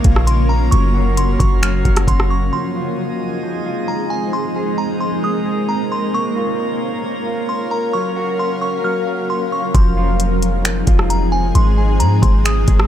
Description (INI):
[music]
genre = hip hop, atmospheric cloud-rap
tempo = 133 BPM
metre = 4/4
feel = half-time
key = unclear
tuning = A4 = 440 Hz
[part]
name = granular cloud pad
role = sustained chords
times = 0.0-12.9 s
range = Db3 to F5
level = -21 LUFS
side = left 1 dB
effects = built-in reverb, sidechain pumping
[part]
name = mellow electric guitar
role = arpeggios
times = 0.0-12.9 s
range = F3 to Ab4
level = -26 LUFS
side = right 1 dB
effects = low-pass filter, digital delay
[part]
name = clean 808-style bass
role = bass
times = 0.0-2.5, 9.7-12.9 s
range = F1 to Ab2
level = -16 LUFS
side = equal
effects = none
[part]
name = smooth R&B drum kit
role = drums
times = 0.0-2.3, 9.7-12.9 s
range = finger snaps, hi-hat, kick drum, rim click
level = -16 LUFS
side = equal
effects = none
[part]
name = drifting glass-harmonics texture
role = texture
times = 0.0-9.7 s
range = F4 to Bb5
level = -31 LUFS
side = right 1 dB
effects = chorus, built-in reverb
[part]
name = delicate synth tine bell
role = melody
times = 0.3-12.9 s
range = Ab5 to F6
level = -24 LUFS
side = right 1 dB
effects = chorus, low-pass filter, digital delay
[sound]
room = little or no reverb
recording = none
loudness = -15 LUFS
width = side -10 dB against mid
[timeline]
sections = 0.0-2.5 A section; 2.5-9.7 B section; 9.7-12.9 A section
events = none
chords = 0.0 Bbm; 0.7 Gbmaj7; 2.5 Fm7; 4.3 Abadd9; 6.1 Bbm; 7.9 Gbmaj7; 9.7 Fm7; 11.6 Abadd9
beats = 0.27 | 0.72 1.18 1.63 2.08 | 2.53 2.98 3.43 3.88 | 4.33 4.78 5.24 5.69 | 6.14 6.59 7.04 7.49 | 7.94 8.39 8.84 9.29 | 9.75 10.20 10.65 11.10 | 11.55 12.00 12.45